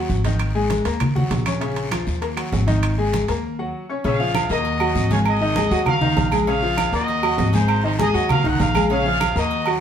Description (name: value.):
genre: latin, salsa.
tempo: 198 BPM.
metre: 4/4.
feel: straight.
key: Bb minor.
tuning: A4 = 440 Hz.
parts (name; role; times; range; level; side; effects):
bright baby grand piano; accompaniment; 0.0-9.8 s; Db3 to Db6; -22 LUFS; left 2 dB; none.
upright bass; bass; 0.0-9.8 s; Ab1 to Eb2; -24 LUFS; equal; none.
congas; percussion; 0.1-9.8 s; none; -25 LUFS; right 1 dB; none.
guiro; percussion; 0.1-9.8 s; none; -36 LUFS; left 3 dB; none.
timbales and agogo bells; percussion; 0.2-9.8 s; none; -27 LUFS; right 8 dB; none.
claves; percussion; 0.4-9.8 s; none; -34 LUFS; right 6 dB; none.
bright trumpet section; melody; 4.1-9.7 s; Eb4 to Gb5; -24 LUFS; equal; none.
room: moderate studio reverb, RT60 0.7 s.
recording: band playing live in one room.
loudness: -18 LUFS.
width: side -8 dB against mid.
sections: 0.0-4.0 A section; 4.0-9.8 B section.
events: break 3.4-4.0.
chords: 0.4 Absus2; 1.0 Ebm; 1.6 Bbm; 2.2 Ebm; 2.8 Absus2; 3.4 Ebm; 4.0 Bbm7; 4.7 Ebm; 5.3 Ab5; 5.9 Ebmadd9; 6.5 Bbm7; 7.1 Ebm; 7.7 Ab5; 8.3 Ebm; 8.9 Bbm7.